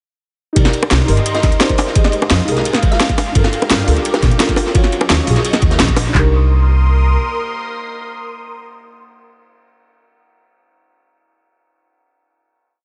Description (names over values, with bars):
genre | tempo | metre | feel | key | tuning
liquid drum and bass | 172 BPM | 4/4 | straight | C minor | A4 = 440 Hz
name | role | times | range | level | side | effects
deep mellow chord stab | accompaniment | 0.5-11.5 s | Db4 to Eb5 | -24 LUFS | equal | chorus, analog delay
lush unison pad | sustained chords | 0.8-9.7 s | Gb3 to Eb6 | -27 LUFS | equal | chorus, phaser
upright bass | bass | 0.6-7.2 s | G1 to Bb2 | -17 LUFS | equal | none
crunchy breakbeat drum kit | drums | 0.6-6.1 s | ride cymbal, snare drum | -26 LUFS | equal | high-pass filter on cymbals, high-pass filter on snare, high-pass filter on room
drum and bass drum kit | drums | 0.6-6.2 s | handclaps, kick drum | -17 LUFS | equal | overdrive
drum and bass drum kit | drums | 0.6-6.0 s | hi-hat, snare drum | -21 LUFS | equal | overdrive, dub echo
bongos | percussion | 0.8-6.0 s | none | -21 LUFS | equal | none
thumb-piano-like synth pluck | melody | 1.3-3.3 s | C5 to F5 | -27 LUFS | equal | chorus, phaser, analog delay
room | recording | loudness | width
light reverb, small room ambience | echo-heavy mix, nothing above 10.4 kHz | -14 LUFS | mono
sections
0.6-6.1 drop; 6.1-8.9 final chord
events
drop 0.6-6.1; band accent 5.8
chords
0.6 Cm7; 2.0 Fm7; 3.4 Gm7; 4.7 Ebm7; 6.1 Cm7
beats
| 0.56 0.91 1.26 1.61 | 1.96 2.31 2.65 3.00 | 3.35 3.70 4.05 4.40 | 4.75 5.10 5.45 5.79 | 6.14 6.49 6.84 7.19 | 7.54 7.89 8.24 8.59